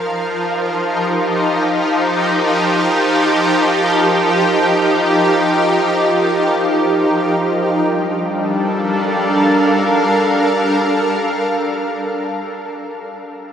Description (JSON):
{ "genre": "ambient", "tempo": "free time", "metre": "none", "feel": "none", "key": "G minor", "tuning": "A4 = 440 Hz", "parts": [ { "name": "shimmering ambient pad", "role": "sustained chords", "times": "0.0-12.5 s", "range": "F3 to F5", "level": "-14 LUFS", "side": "equal", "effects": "chorus, built-in reverb" } ], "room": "wet huge ambient reverb, RT60 9.7 s", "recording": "none", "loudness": "-13 LUFS", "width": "side -8 dB against mid", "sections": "0.0-7.5 A section; 7.5-12.0 B section", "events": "none", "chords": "0.0 F7sus4; 7.5 Gm7" }